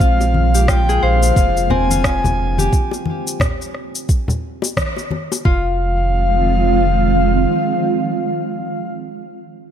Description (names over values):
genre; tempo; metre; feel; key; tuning
organic downtempo; 88 BPM; 4/4; swing 60% on 16ths; F dorian; A4 = 441 Hz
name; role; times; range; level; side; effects
breathy flute-like synth lead; melody; 0.0-8.9 s; F5 to Ab5; -21 LUFS; left 2 dB; chorus, digital delay
granular cloud pad; sustained chords; 0.0-8.9 s; D3 to F4; -21 LUFS; right 3 dB; built-in reverb, sidechain pumping
Celtic harp; arpeggios; 0.0-8.0 s; C4 to C5; -24 LUFS; left 5 dB; digital delay
warm sub bass; bass; 0.0-7.5 s; F1 to Bb1; -17 LUFS; right 1 dB; sidechain pumping
electronic cabasa and rim click; drums; 0.0-5.4 s; none; -23 LUFS; left 1 dB; small room ambience
electronic kick drum; drums; 0.0-5.6 s; none; -17 LUFS; right 1 dB; small room ambience
bongos and congas; percussion; 0.2-5.4 s; none; -23 LUFS; left 2 dB; none
room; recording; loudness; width
light reverb, digital ambience; none; -14 LUFS; side -9 dB against mid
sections
0.0-5.5 A section; 5.5-8.2 B section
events
band accent 4.8-5.1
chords
0.0 Bb7; 5.5 Fm7